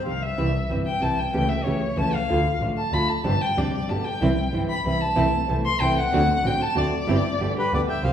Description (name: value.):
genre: tango.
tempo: 188 BPM.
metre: 3/4.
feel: rubato.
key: C major.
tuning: A4 = 440 Hz.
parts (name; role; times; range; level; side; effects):
bandoneon; melody; 0.0, 7.6-8.1 s; B4 to G5; -27 LUFS; left 1 dB; none.
dark studio string section; stabs; 0.0-0.4, 4.2-7.9 s; G3 to G4; -29 LUFS; right 1 dB; none.
clear double bass; bass; 0.0-8.1 s; G1 to D2; -26 LUFS; right 1 dB; none.
warm violin; second line; 0.1-8.1 s; G4 to C6; -25 LUFS; left 2 dB; none.
nylon-string guitar; accompaniment; 0.1-8.1 s; B2 to G4; -26 LUFS; right 1 dB; none.
room: wet large studio reverb, RT60 1.3 s.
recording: band playing live in one room.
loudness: -20 LUFS.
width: side -9 dB against mid.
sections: 0.4-8.0 A section.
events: violin solo 0.4-8.0.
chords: 0.4 C; 1.3 A7/C#; 2.3 Dm; 3.2 Gsus4; 3.9 G; 4.2 C; 5.2 Am/C; 6.1 D7; 7.1 C/G; 7.4 G.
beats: 0.06 | 0.38 0.70 1.02 | 1.34 1.66 1.98 | 2.29 2.61 2.93 | 3.25 3.57 3.89 | 4.21 4.53 4.85 | 5.17 5.49 5.81 | 6.12 6.44 6.76 | 7.08 7.40 7.72 | 8.04.